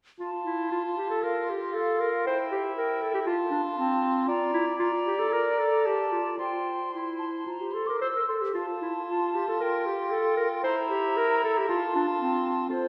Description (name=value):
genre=quick classical-period movement for symphony orchestra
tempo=110-120 BPM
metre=4/4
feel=rubato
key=F major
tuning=A4 = 440 Hz
part: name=hollow concert flute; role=second line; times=0.2-12.9 s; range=C5 to E6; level=-34 LUFS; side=equal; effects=none
part: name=mellow cor anglais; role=second line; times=0.2-12.9 s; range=E4 to D5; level=-34 LUFS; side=equal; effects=none
part: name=warm clarinet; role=second line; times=0.2-12.9 s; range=C4 to C5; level=-30 LUFS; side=equal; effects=none
room=wet scoring stage reverb, RT60 2.0 s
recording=heard from further back in the room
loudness=-28 LUFS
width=mono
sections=0.2-12.9 A section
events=none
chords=0.2 F; 1.2 N.C.; 2.3 Edim; 3.3 F; 4.3 Bb; 6.4 C; 8.6 F; 9.6 Fadd9; 10.7 Edim; 11.7 F